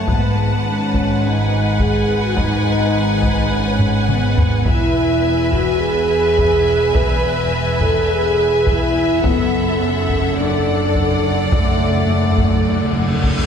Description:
cinematic, epic orchestral film score; 105 BPM; 4/4; straight; A4 = 440 Hz
clear studio violin section; melody; 0.0-13.5 s; F#5 to A5; -27 LUFS; left 3 dB
rich studio violin section; second line; 0.0-13.5 s; D5 to F#5; -25 LUFS; left 2 dB
rich symphonic viola section; accompaniment; 0.0-13.5 s; A4 to B4; -25 LUFS; equal
mellow French horn section; sustained chords; 0.0-13.5 s; A3 to B4; -19 LUFS; equal
clear symphonic cello section; bass; 0.0-13.5 s; E2 to G#2; -23 LUFS; right 1 dB
warm symphonic double bass section; bass; 0.0-13.5 s; E1 to G#1; -22 LUFS; right 1 dB
taiko ensemble; drums; 0.1-13.5 s; -21 LUFS; equal
timpani; percussion; 9.2-13.5 s; F#2; -24 LUFS; left 1 dB
reverse cymbal; sound effects; 12.7-13.5 s; -28 LUFS; equal
wet scoring stage reverb, RT60 1.8 s; heard from further back in the room; -14 LUFS; side -7 dB against mid
0.0-13.5 A section
drum fill 3.8-4.7; timpani fill 9.2-13.5; reverse cymbal 12.7-13.5
0.1 G#m7; 4.7 E; 9.2 D/F#

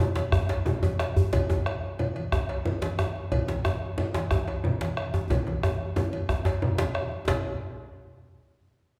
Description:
west african traditional, West African drum ensemble; 121 BPM (dotted quarters); 12/8; straight
bombo; percussion; 0.2-7.4 s; -35 LUFS; equal
congas; percussion; 0.2-7.4 s; -36 LUFS; equal
cowbell; percussion; 0.2-7.4 s; -39 LUFS; equal
djembe; percussion; 0.2-7.4 s; -30 LUFS; equal
djembe; percussion; 0.5-7.4 s; -36 LUFS; equal
wet recital hall reverb, RT60 1.7 s; recorded in a church or concert hall; -28 LUFS; mono
0.0-7.3 A section; 7.3-9.0 B section
drum fill 5.3-7.3

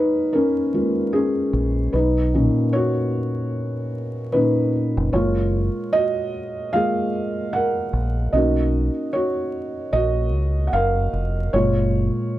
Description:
lo-fi hip hop; 75 BPM; 4/4; swing 60% on 16ths; F# major; A4 = 440 Hz
felt-muted upright piano; accompaniment; 0.0-12.4 s; A#2 to F#5; -20 LUFS; equal; cassette tape, low-pass filter
deep dub fingered electric bass; bass; 1.5-12.1 s; E#1 to C#2; -21 LUFS; equal
moderate small room reverb, RT60 0.5 s; dark, warm production, vinyl crackle; -19 LUFS; side -14 dB against mid
0.0-12.4 A section
felt piano solo 0.0-12.4
0.0 F#maj9 (rootless); 1.9 Bmaj9; 5.1 F#maj9; 8.3 Bmaj9; 11.5 F#maj9

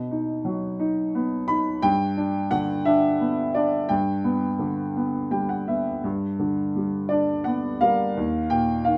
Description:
classical, lyrical solo piano; 58 BPM (dotted quarters); 6/8; rubato; G major; A4 = 442 Hz
warm concert grand piano; solo; 0.0-9.0 s; Eb2 to B5; -24 LUFS; equal
light reverb; -24 LUFS; mono
0.0-6.0 A section; 6.0-9.0 B section
grand piano fill 5.0-6.0
0.0 B; 1.8 G; 8.2 Ebsus2

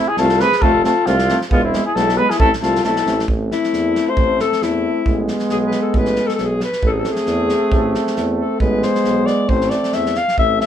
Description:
balkan folk, Balkan brass band; 135 BPM; 2/4; swing 55% on 16ths; A harmonic minor; A4 = 440 Hz
mellow cornet; melody; 0.0-3.3 s; E4 to B4; -17 LUFS; left 1 dB
warm alto saxophone; second line; 0.0-10.7 s; B3 to F5; -20 LUFS; left 4 dB
brilliant trombone; accompaniment; 0.0-10.7 s; G#3 to A3; -23 LUFS; right 4 dB
warm euphonium; accompaniment; 0.0-10.7 s; B3 to C4; -25 LUFS; left 3 dB
clear tuba; bass; 0.2-10.6 s; E1 to E2; -22 LUFS; right 1 dB
loose indie drum kit; percussion; 0.2-10.7 s; kick drum, snare drum; -22 LUFS; right 1 dB
moderate small room reverb, RT60 0.5 s; band playing live in one room; -15 LUFS; side -9 dB against mid
0.0-3.3 A section; 3.3-10.7 B section
alto saxophone solo 3.3-10.7
0.0 F; 1.5 E; 2.4 Am; 5.1 G#m; 6.8 Am; 8.6 Amadd9; 9.5 Am

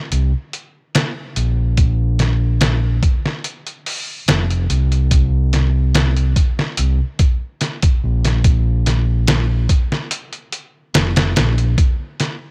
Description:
trip hop; 72 BPM; 4/4; straight; A4 = 440 Hz
overdriven fingered electric bass; bass; 0.1-11.7 s; F1 to C2; -18 LUFS; equal
trip hop sampler-style drum kit; drums; 0.1-12.4 s; hi-hat, kick drum, snare drum; -19 LUFS; equal; small room ambience
digital ambience; -17 LUFS; mono
0.0-11.8 A section
kick drops out 10.1-11.8

